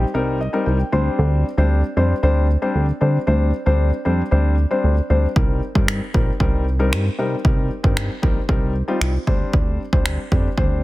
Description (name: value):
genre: dance-pop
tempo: 115 BPM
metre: 4/4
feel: straight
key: C minor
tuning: A4 = 439 Hz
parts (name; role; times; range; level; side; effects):
- dark concert grand piano; accompaniment; 0.0-10.8 s; G3 to C6; -22 LUFS; left 2 dB; sidechain pumping
- chorused synth bass; bass; 0.0-10.8 s; Bb1 to D3; -18 LUFS; equal; sidechain pumping
- punchy analog drum machine; drums; 5.4-10.7 s; finger snaps, kick drum; -19 LUFS; equal; soft clipping on snare
room: little or no reverb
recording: dense, heavily limited modern master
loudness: -17 LUFS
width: side -18 dB against mid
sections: 0.0-10.8 A section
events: grand piano fill 0.1-1.2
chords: 0.0 Cm7; 0.9 Gsus4/D; 5.4 Cm7; 9.3 Gsus4/D